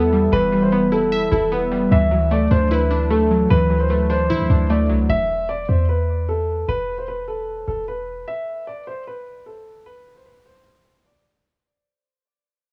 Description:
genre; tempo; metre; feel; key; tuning
hip hop, trap; 151 BPM; 4/4; half-time; E minor; A4 = 439 Hz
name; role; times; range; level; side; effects
dark baby grand piano; melody; 0.0-11.2 s; A4 to E5; -24 LUFS; equal; low-pass filter, tape echo
glassy digital keys; accompaniment; 0.0-5.1 s; E3 to E5; -22 LUFS; equal; chorus, low-pass filter
clean 808-style bass; bass; 0.0-8.2 s; E1 to F#3; -23 LUFS; equal; none
room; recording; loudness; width
studio reverb; studio ambience; -19 LUFS; mono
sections
0.0-5.1 A section; 5.1-11.4 B section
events
fade-out 5.1-11.4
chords
0.0 Em; 1.9 Dadd9; 5.1 E5; 8.3 N.C.

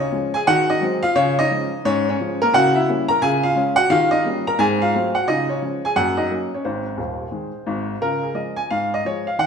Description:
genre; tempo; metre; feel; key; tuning
jazz, stride piano; 175 BPM; 4/4; swing 64% on 8ths; Db major; A4 = 439 Hz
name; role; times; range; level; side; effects
warm upright piano; solo; 0.0-9.5 s; Eb1 to Bb5; -18 LUFS; equal; none
room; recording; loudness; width
wet recital hall reverb, RT60 1.5 s; minimal, uncompressed stereo recording; -17 LUFS; side -6 dB against mid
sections
0.0-8.0 A section; 8.0-9.5 B section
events
none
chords
0.5 Ab7/Eb; 1.2 Db; 2.5 Dbdim7; 3.2 Db; 3.9 Eb7; 4.6 Ab7b9; 5.3 Db; 6.0 Gb; 6.6 Ab; 8.0 Db

